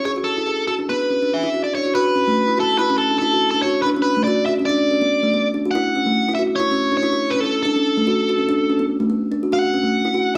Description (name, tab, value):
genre	rock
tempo	286 BPM (eighths)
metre	9/8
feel	straight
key	unclear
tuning	A4 = 439 Hz
part	biting overdriven guitar	melody	0.0-10.4 s	A4 to F#5	-22 LUFS	equal	slapback echo
part	kalimba	arpeggios	0.0-10.4 s	A3 to G#4	-22 LUFS	equal	none
room	moderate large studio reverb, RT60 1.0 s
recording	band playing live in one room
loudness	-19 LUFS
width	mono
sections	0.0-2.0 A section; 2.0-10.4 B section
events	none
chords	0.1 Dadd9; 0.9 Bm; 2.0 F#m7; 3.8 Bm7; 5.7 A (rootless); 7.6 Bm7; 9.5 F#m7